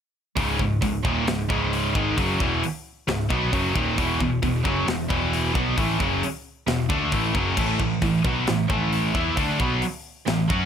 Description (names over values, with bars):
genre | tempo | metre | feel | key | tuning
heavy metal | 133 BPM | 4/4 | straight | C# minor | A4 = 439 Hz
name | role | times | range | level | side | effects
scooped high-gain guitar | riff | 0.4-10.7 s | C#2 to F#4 | -27 LUFS | left 9 dB | distortion
scooped high-gain guitar | riff | 0.4-10.7 s | C#2 to F#4 | -27 LUFS | right 9 dB | distortion
tight distorted guitar | riff | 0.4-10.7 s | C#2 to F#4 | -28 LUFS | left 1 dB | distortion
picked electric bass | bass | 0.4-10.7 s | C#1 to F#2 | -28 LUFS | equal | none
tight metal drum kit | drums | 0.4-10.6 s | crash cymbal, hi-hat, kick drum, snare drum | -28 LUFS | equal | none
room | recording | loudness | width
studio ambience | none | -21 LUFS | side -8 dB against mid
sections
0.4-10.7 A section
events
none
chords
0.4 C#m; 4.0 E5; 7.6 A5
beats
| 0.36 0.82 1.27 1.72 | 2.17 2.62 3.07 3.52 | 3.97 4.42 4.87 5.32 | 5.77 6.22 6.67 7.12 | 7.57 8.02 8.47 8.92 | 9.37 9.82 10.27